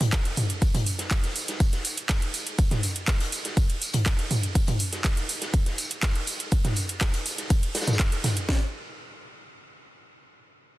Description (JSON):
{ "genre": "techno", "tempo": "122 BPM", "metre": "4/4", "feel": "straight", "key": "none", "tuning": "none", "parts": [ { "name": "house drum kit", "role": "drums", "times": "0.0-8.5 s", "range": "handclaps, hi-hat, ride cymbal, toms", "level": "-27 LUFS", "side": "right 1 dB", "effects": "sidechain pumping on hats, sidechain pumping on toms, sidechain pumping on cymbals" }, { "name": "raw garage drum kit", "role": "drums", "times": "0.0-8.4 s", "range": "hi-hat, snare drum, tambourine", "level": "-35 LUFS", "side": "left 1 dB", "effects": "high-pass filter on hats, high-pass filter on snare, high-pass filter on perc, high-pass filter on room" }, { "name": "house drum kit", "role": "drums", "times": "0.1-8.6 s", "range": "kick drum, snare drum", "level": "-23 LUFS", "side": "equal", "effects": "none" } ], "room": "little or no reverb", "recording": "dense, heavily limited modern master, lossy compression artefacts", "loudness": "-23 LUFS", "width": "side -17 dB against mid", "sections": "0.0-8.5 A section; 8.5-10.5 B section", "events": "drop 0.0-8.5", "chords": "none" }